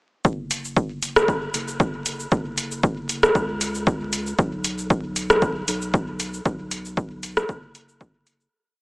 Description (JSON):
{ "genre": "dub techno", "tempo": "116 BPM", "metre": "4/4", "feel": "swing 54% on 16ths", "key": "unclear", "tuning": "A4 = 440 Hz", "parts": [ { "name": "round analog bass", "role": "bass", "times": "0.2-8.5 s", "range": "F#1 to C#2", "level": "-33 LUFS", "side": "equal", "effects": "sidechain pumping" }, { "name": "deep house drum kit", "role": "drums", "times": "0.2-8.5 s", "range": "hi-hat, rim click, shaker", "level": "-22 LUFS", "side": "equal", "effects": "overdrive" }, { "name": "electronic kick drum", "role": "drums", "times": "0.2-8.1 s", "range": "none", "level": "-23 LUFS", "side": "equal", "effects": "none" } ], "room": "light reverb", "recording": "vinyl crackle, small speaker sound", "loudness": "-21 LUFS", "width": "side -24 dB against mid", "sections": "0.2-8.5 groove", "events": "fade-out 5.8-8.5", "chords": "none" }